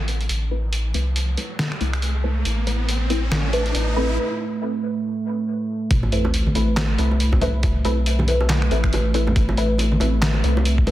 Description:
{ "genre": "deep dubstep", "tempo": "139 BPM", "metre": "4/4", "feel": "swing 59% on 16ths, half-time", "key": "A minor", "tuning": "A4 = 440 Hz", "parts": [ { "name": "dark analog pad", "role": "sustained chords", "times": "1.5-10.9 s", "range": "A3", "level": "-28 LUFS", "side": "right 2 dB", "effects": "lush chorus" }, { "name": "soft dub sub bass", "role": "bass", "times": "0.0-10.9 s", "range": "A1 to C2", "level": "-21 LUFS", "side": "equal", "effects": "none" }, { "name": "riser and sub drop", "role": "sound effects", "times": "0.3-7.6 s", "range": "none", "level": "-30 LUFS", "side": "right 1 dB", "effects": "none" }, { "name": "filtered dub chord stab", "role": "stabs", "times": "0.1-10.9 s", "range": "A3 to B4", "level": "-26 LUFS", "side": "left 1 dB", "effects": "phaser, analog chorus, dub echo" }, { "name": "trip hop sampler-style drum kit", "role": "drums", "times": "0.1-10.9 s", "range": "finger snaps, handclaps, hi-hat, snare drum", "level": "-26 LUFS", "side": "equal", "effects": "none" }, { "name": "electronic kick drum", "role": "drums", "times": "5.9-10.9 s", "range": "none", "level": "-21 LUFS", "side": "equal", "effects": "none" }, { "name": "bongos and congas", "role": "percussion", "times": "6.0-10.9 s", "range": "none", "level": "-29 LUFS", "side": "right 1 dB", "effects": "dub echo" } ], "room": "light reverb, digital ambience", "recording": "dense, heavily limited modern master", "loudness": "-18 LUFS", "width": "side -14 dB against mid", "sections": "0.0-5.9 A section; 5.9-10.9 B section", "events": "build-up 0.0-5.9; filter sweep on synth stab 0.0-5.9; filter sweep on analog synth pad 0.0-5.9; riser 0.3-4.2; break 4.2-5.9; drop 5.9-10.9; impact 5.9-7.6", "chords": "0.0 Amadd9" }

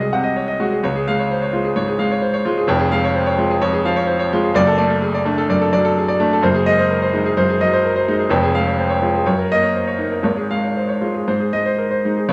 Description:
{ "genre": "classical, virtuoso piano study", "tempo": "127 BPM", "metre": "4/4", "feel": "rubato", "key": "Db major", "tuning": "A4 = 440 Hz", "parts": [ { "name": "clear grand piano", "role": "solo", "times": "0.0-12.3 s", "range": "F1 to Gb5", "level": "-18 LUFS", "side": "equal", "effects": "none" } ], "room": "moderate studio reverb, RT60 0.8 s", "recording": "none", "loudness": "-18 LUFS", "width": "mono", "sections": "0.0-12.3 A section", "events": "none", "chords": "0.0 Ab7/C; 0.8 Db; 2.7 Db/F; 4.5 D/F#; 6.4 Ab7/Gb; 8.3 Db/F; 9.3 Ebm7/Gb; 10.3 Db/Ab; 11.3 Ab" }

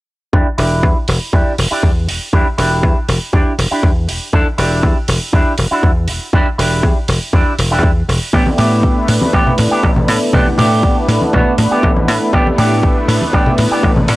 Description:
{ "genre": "nu-disco, nu disco", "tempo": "120 BPM", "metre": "4/4", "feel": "straight", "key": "E minor", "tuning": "A4 = 441 Hz", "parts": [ { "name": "electric guitar with an envelope filter", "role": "riff", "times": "0.3-14.1 s", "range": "B3 to A4", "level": "-18 LUFS", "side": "right 1 dB", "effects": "lush chorus, low-pass filter, tape echo" }, { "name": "dry thumbed slap bass", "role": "bass", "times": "0.3-14.2 s", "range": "E1 to A2", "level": "-15 LUFS", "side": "equal", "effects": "tube saturation" }, { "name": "electronic kick drum", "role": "drums", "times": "0.3-13.9 s", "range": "none", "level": "-14 LUFS", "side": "equal", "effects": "small room ambience" }, { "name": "hi-hat", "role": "drums", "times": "0.6-14.2 s", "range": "none", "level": "-24 LUFS", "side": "right 2 dB", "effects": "small room ambience" }, { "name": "warm analog pad", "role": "accompaniment", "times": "8.3-14.2 s", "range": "A3 to B4", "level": "-17 LUFS", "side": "equal", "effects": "chorus, sidechain pumping, tape echo" }, { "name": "congas", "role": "percussion", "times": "8.5-14.1 s", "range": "none", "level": "-20 LUFS", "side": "left 1 dB", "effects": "none" } ], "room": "little or no reverb", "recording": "dry, gritty hardware recording", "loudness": "-11 LUFS", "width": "side -18 dB against mid", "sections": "0.3-14.2 A section", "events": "filter sweep on clean electric guitar 0.3-14.2", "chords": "0.3 Em7; 8.3 A9sus4" }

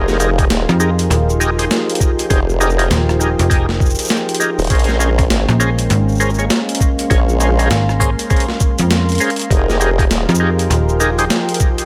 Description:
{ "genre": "glitch hop", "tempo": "100 BPM", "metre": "4/4", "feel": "swing 61% on 16ths", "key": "F minor", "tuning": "A4 = 440 Hz", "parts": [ { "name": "warm analog pad", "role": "sustained chords", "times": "0.0-11.9 s", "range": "F3 to Bb4", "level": "-25 LUFS", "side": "equal", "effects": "chorus, sidechain pumping" }, { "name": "overdriven tonewheel organ", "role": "stabs", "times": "0.0-11.3 s", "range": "Db4 to Db5", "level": "-23 LUFS", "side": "equal", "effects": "chorus vibrato, slow rotary speaker, sidechain pumping, digital delay" }, { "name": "formant-sweep wobble bass", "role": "bass", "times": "0.0-10.3 s", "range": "Eb1 to Bb1", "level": "-18 LUFS", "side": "equal", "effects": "chorus" }, { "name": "ethereal airy pad", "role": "texture", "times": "0.0-11.9 s", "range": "F4 to C6", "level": "-28 LUFS", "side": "equal", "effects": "ensemble chorus, built-in reverb, sidechain pumping" }, { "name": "boom bap sampler-style drum kit", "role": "drums", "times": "0.1-11.9 s", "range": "hi-hat, rim click, shaker, snare drum", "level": "-22 LUFS", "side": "equal", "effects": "small room ambience" }, { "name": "electronic kick drum", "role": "drums", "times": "0.4-11.8 s", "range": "none", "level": "-18 LUFS", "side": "equal", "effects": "small room ambience" }, { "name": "slap-like FM bass", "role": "bass", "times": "0.7-11.3 s", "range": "Eb1 to F2", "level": "-18 LUFS", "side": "equal", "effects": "none" } ], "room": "light reverb, digital ambience", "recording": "none", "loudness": "-15 LUFS", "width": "mono", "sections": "0.0-11.9 A section", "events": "none", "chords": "0.0 Fm11; 4.7 Bbm9; 9.5 Fm11" }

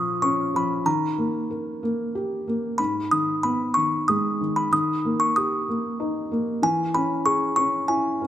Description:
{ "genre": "children's music, lullaby", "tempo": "94 BPM", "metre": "3/4", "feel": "rubato", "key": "unclear", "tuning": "A4 = 440 Hz", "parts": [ { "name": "music box", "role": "melody", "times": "0.0-8.3 s", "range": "G#5 to D#6", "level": "-23 LUFS", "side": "equal", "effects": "none" }, { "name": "felt-muted upright piano", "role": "accompaniment", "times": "0.0-8.3 s", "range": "G#2 to A#4", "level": "-25 LUFS", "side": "left 1 dB", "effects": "none" } ], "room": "light reverb", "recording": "close, detailed microphones", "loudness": "-21 LUFS", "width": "side -12 dB against mid", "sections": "0.0-8.3 A section", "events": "none", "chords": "0.0 A#m; 0.9 D#; 2.8 G#m; 4.7 D#; 6.6 C#m/E" }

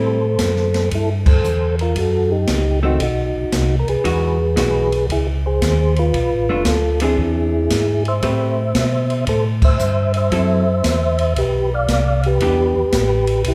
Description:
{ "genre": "soul jazz organ trio", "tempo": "115 BPM", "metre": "4/4", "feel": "swing 67% on 8ths", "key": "unclear", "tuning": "A4 = 439 Hz", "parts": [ { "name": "percussive tonewheel organ", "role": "melody", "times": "0.0-13.5 s", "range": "Eb4 to F5", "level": "-22 LUFS", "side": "equal", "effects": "slow rotary speaker, chorus vibrato" }, { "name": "vintage hollow-body jazz guitar", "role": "accompaniment", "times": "0.0-12.7 s", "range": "Eb3 to B4", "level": "-25 LUFS", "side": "equal", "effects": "none" }, { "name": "mellow tonewheel organ", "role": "bass", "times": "0.0-13.5 s", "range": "F1 to B2", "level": "-22 LUFS", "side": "equal", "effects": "overdrive, chorus vibrato, slow rotary speaker" }, { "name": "open jazz drum kit", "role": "drums", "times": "0.4-13.5 s", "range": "crash cymbal, hi-hat, kick drum, ride cymbal, snare drum", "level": "-24 LUFS", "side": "equal", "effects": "none" } ], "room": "moderate recital hall reverb, RT60 1.6 s", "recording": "recorded in a church or concert hall", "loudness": "-18 LUFS", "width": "mono", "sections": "0.0-13.5 A section", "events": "band accent 1.2, 9.5", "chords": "0.0 Am7; 2.0 F#m; 3.0 B; 4.1 Emaj9; 6.1 Bm7b5; 7.2 Eaug7; 8.2 Am9; 10.3 F#m7b5; 11.4 Bdim; 12.4 Em7" }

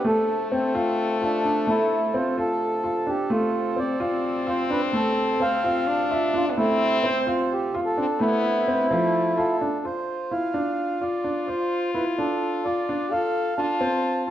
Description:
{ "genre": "contemporary instrumental, chamber music in an uneven meter", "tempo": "257 BPM (eighths)", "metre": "7/8", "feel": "straight", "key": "D minor", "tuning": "A4 = 440 Hz", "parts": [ { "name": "mellow accordion", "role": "melody", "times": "0.0-14.3 s", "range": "C4 to A5", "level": "-25 LUFS", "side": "right 1 dB", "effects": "none" }, { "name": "stopped French horn", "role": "second line", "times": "0.0-14.3 s", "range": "A3 to A4", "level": "-28 LUFS", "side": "left 3 dB", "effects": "none" }, { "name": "clear woodwind section", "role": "sustained chords", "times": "0.0-9.8 s", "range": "D2 to A4", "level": "-35 LUFS", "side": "equal", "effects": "none" }, { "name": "warm baby grand piano", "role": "arpeggios", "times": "0.0-14.3 s", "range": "F3 to F4", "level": "-26 LUFS", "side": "equal", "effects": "none" } ], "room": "wet recital hall reverb, RT60 1.3 s", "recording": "dark, warm production", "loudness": "-21 LUFS", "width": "side -11 dB against mid", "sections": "0.0-9.8 A section; 9.8-14.3 B section", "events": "none", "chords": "0.0 Dm7; 3.3 F/D; 8.2 Dm9; 9.8 Dm7; 13.1 F" }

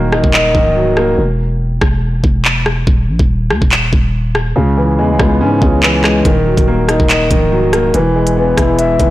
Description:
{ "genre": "hip hop, drill", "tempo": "142 BPM", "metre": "4/4", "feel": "half-time", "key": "Eb phrygian", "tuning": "A4 = 440 Hz", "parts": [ { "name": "dark concert grand piano", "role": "accompaniment", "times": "0.0-1.2, 4.6-9.1 s", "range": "Db3 to E5", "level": "-13 LUFS", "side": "equal", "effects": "low-pass filter" }, { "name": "growling 808-style bass", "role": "bass", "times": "0.0-9.1 s", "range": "Db1 to Ab2", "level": "-16 LUFS", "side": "equal", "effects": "none" }, { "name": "drill drum kit", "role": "drums", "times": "0.1-9.1 s", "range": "handclaps, hi-hat, kick drum, rim click", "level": "-14 LUFS", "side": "equal", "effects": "none" } ], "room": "little or no reverb", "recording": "blown-out, overdriven recording, overdrive", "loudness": "-10 LUFS", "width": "side -15 dB against mid", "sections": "0.0-9.1 A section", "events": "break 0.0-6.3; hi-hats muted 4.6-6.3", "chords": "0.0 Ebm; 1.2 N.C.; 2.9 Eb5; 4.6 Dbm7; 6.3 Ebm; 7.9 E" }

